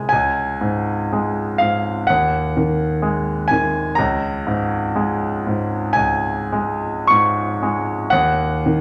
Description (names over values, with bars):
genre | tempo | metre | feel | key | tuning
classical, romantic nocturne for solo piano | 49-64 BPM | 4/4 | rubato | unclear | A4 = 440 Hz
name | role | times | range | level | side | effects
clear concert grand piano | solo | 0.0-8.8 s | Db2 to Db6 | -19 LUFS | equal | none
room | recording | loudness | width
moderate large studio reverb, RT60 1.2 s | none | -19 LUFS | mono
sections
0.0-8.8 A section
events
none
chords
0.1 Db5; 2.1 Ab5/Eb; 4.0 Db5; 8.1 N.C.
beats
| 0.11 1.09 2.08 3.02 | 3.98 4.94 5.93 7.07 | 8.11